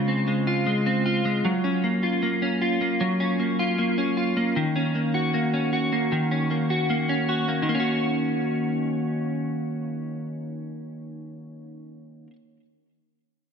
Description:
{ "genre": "dream pop", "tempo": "77 BPM", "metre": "4/4", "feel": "straight", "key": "Eb dorian", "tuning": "A4 = 440 Hz", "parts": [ { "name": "clean electric guitar", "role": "solo", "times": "0.0-12.4 s", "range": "Db3 to Gb4", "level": "-23 LUFS", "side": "equal", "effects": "analog chorus, digital delay" } ], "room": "wet concert hall reverb, RT60 2.1 s", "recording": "none", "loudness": "-22 LUFS", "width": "side -6 dB against mid", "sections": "0.0-7.7 A section; 7.7-10.8 B section", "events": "none", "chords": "0.0 Dbmaj7; 1.4 Gbmaj7; 4.6 Ebm7" }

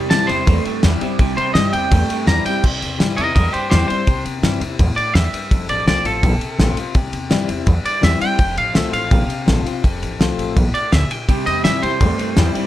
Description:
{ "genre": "rockabilly", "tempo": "166 BPM", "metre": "4/4", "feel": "straight", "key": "C mixolydian", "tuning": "A4 = 441 Hz", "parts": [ { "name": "picked steel-string acoustic guitar", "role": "accompaniment", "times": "0.0-12.7 s", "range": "F2 to F4", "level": "-23 LUFS", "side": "left 6 dB", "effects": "none" }, { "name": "electric guitar through a small old amp", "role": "riff", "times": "0.0-2.6, 11.3-12.7 s", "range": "C3 to A3", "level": "-23 LUFS", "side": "right 6 dB", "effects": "wide subtle chorus" }, { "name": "upright bass", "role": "bass", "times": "0.0-12.6 s", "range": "F1 to G2", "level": "-20 LUFS", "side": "equal", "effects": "none" }, { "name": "twangy electric guitar", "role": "melody", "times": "0.1-12.7 s", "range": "G4 to Bb5", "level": "-21 LUFS", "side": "right 1 dB", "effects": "analog delay" }, { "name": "cloth-damped thuddy drum kit", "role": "drums", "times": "0.1-12.6 s", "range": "crash cymbal, kick drum, ride cymbal, snare drum", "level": "-19 LUFS", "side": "equal", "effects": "none" } ], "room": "little or no reverb", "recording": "none", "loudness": "-15 LUFS", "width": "side -13 dB against mid", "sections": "0.0-2.6 A section; 2.6-12.7 B section", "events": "clean electric guitar solo 0.0-2.6", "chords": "0.0 C; 5.5 F; 7.0 C; 8.4 F; 11.3 C" }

